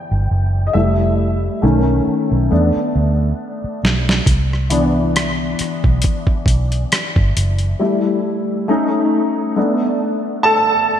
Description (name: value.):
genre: R&B, neo-soul.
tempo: 68 BPM.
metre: 4/4.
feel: swing 55% on 16ths.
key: C major.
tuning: A4 = 440 Hz.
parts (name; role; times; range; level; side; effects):
warm grand piano; accompaniment; 0.0-11.0 s; D#3 to A5; -17 LUFS; left 1 dB; ensemble chorus.
vintage muted fingered electric bass; bass; 0.1-7.7 s; F1 to E2; -17 LUFS; equal; none.
dusty soul sampler-style drum kit; drums; 3.8-7.8 s; hi-hat, kick drum, rim click, snare drum; -17 LUFS; equal; overdrive, gated reverb.
room: moderate lush hall reverb, RT60 2.7 s.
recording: bright 1980s-style digital production.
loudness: -14 LUFS.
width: side -9 dB against mid.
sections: 0.0-11.0 A section.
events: grand piano solo 0.0-11.0; drum fill 3.4-4.3.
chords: 0.0 Cmaj9 (rootless); 0.7 Fmaj7; 1.6 B9; 2.5 E7sus4; 4.3 Cmaj9; 7.8 Emadd11/G; 8.7 A; 9.6 Asus24.